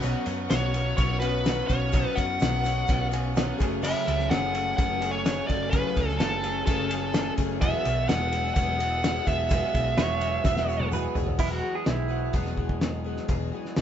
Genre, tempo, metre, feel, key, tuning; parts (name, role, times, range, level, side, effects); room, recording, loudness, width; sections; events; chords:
folk rock and heartland rock; 127 BPM; 4/4; straight; E major; A4 = 440 Hz
clear upright piano; accompaniment; 0.0-11.4 s; A3 to G#5; -42 LUFS; right 3 dB
picked plugged-in twelve-string acoustic guitar; accompaniment; 0.0-13.8 s; E2 to G#4; -35 LUFS; left 6 dB
clear studio string section; sustained chords; 0.0-11.3 s; G#4 to E6; -41 LUFS; equal
electric guitar through a small old amp; riff; 0.0-13.8 s; E2 to G#4; -33 LUFS; equal
hollow-body short-scale picked electric bass; bass; 0.0-13.8 s; E1 to F#2; -30 LUFS; equal
egg shaker; percussion; 0.0-11.3 s; -50 LUFS; left 5 dB
cloth-damped thuddy drum kit; drums; 0.3-13.8 s; crash cymbal, hi-hat, kick drum, ride cymbal, snare drum, toms; -28 LUFS; equal
smooth overdriven lead guitar; melody; 0.5-10.9 s; A4 to F#5; -28 LUFS; equal
pedal steel guitar; second line; 10.0-12.3 s; E4 to E5; -31 LUFS; right 5 dB
light reverb; band playing live in one room, nothing above 7.8 kHz; -23 LUFS; side -9 dB against mid
0.0-11.4 A section; 11.4-13.8 B section
upright piano fill 2.9-3.8; drum fill 10.4-11.4
0.0 Bsus2; 3.6 F#madd9; 7.6 Eadd9